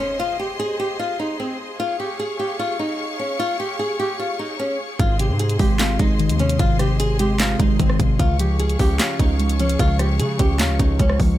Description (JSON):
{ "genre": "hip hop, trap", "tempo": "150 BPM", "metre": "4/4", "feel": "half-time", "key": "unclear", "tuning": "A4 = 440 Hz", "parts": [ { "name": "flamenco guitar", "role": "melody", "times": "0.0-11.2 s", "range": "C4 to Ab4", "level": "-24 LUFS", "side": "equal", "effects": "none" }, { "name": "rich symphonic string section", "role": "sustained chords", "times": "0.0-11.4 s", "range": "Ab4 to Db6", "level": "-30 LUFS", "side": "left 1 dB", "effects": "none" }, { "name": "muted felt-like synth keys", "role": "accompaniment", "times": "5.0-11.4 s", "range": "Ab2 to Db5", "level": "-22 LUFS", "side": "equal", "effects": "chorus" }, { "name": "distorted 808-style bass", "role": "bass", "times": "5.0-11.4 s", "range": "Ab1 to Db3", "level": "-20 LUFS", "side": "equal", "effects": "distortion" }, { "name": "trap drum kit", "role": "drums", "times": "5.0-11.3 s", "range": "handclaps, hi-hat, kick drum, rim click, snare drum", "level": "-20 LUFS", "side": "equal", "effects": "none" } ], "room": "little or no reverb", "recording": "none", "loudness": "-18 LUFS", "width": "side -13 dB against mid", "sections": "0.0-11.4 A section", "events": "none", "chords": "0.0 Ab; 1.8 Db; 5.0 Ab; 8.2 Db", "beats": "| 0.20 0.59 0.99 1.40 | 1.79 2.19 2.60 3.00 | 3.40 3.79 4.20 4.59 | 5.00 5.39 5.79 6.20 | 6.59 7.00 7.39 7.79 | 8.20 8.60 8.99 9.39 | 9.79 10.20 10.60 10.99" }